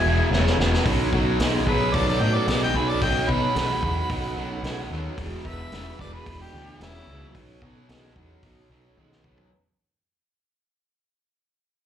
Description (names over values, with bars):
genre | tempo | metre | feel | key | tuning
blues rock power trio and southern rock | 111 BPM | 4/4 | straight | unclear | A4 = 441 Hz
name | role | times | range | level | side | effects
warm harmonica | melody | 0.0-7.3 s | E4 to B5 | -29 LUFS | left 1 dB | overdrive, plate reverb, slapback echo, tape echo
bluesy overdriven lead guitar | second line | 0.0-7.3 s | B3 to G#5 | -34 LUFS | right 4 dB | distortion, plate reverb, slapback echo
growling fingered electric bass | bass | 0.0-9.4 s | E1 to B2 | -26 LUFS | equal | overdrive
cranked stack guitar | riff | 0.1-9.5 s | E2 to G#3 | -27 LUFS | equal | overdrive, slapback echo
vintage drum kit | drums | 0.3-9.5 s | hi-hat, kick drum, snare drum, toms | -29 LUFS | equal | none
mellow tonewheel organ | sustained chords | 0.8-9.5 s | C#4 to A4 | -35 LUFS | right 4 dB | chorus vibrato, slow rotary speaker, plate reverb
room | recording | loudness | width
light reverb | live gig heard through the venue's PA, club reverb | -20 LUFS | side -9 dB against mid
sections
0.0-9.5 A section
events
fade-out 0.0-9.5; drum fill 0.3-0.9, 9.0-9.5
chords
0.0 E; 0.9 B7; 5.2 E7; 7.3 B7